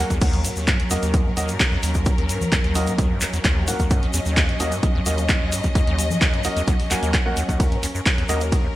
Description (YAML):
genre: acid house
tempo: 130 BPM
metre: 4/4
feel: straight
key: Eb phrygian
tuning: A4 = 440 Hz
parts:
  - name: clear studio string section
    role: sustained chords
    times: 0.0-8.8 s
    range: Gb3 to Eb5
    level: -28 LUFS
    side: equal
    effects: vintage 12-bit sampler grit, sidechain pumping
  - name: liquid acid bass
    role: riff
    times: 0.0-8.7 s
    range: Eb2 to Bb2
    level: -25 LUFS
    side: equal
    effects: chorus, digital delay
  - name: warm grand piano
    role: stabs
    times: 0.0-8.4 s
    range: Bb3 to Ab5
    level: -29 LUFS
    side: equal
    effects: analog chorus, digital delay
  - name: electronic kick drum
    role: drums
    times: 0.1-8.6 s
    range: none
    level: -21 LUFS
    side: equal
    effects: none
  - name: punchy analog drum machine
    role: drums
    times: 0.1-8.6 s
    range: congas, crash cymbal, handclaps, hi-hat, ride cymbal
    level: -25 LUFS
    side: equal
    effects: gated reverb
  - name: egg shaker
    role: percussion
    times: 0.1-8.6 s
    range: none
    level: -31 LUFS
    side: left 2 dB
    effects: none
room: light reverb, digital ambience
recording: bright 1980s-style digital production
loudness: -18 LUFS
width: side -15 dB against mid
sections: 0.0-8.8 A section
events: none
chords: 0.0 Ebm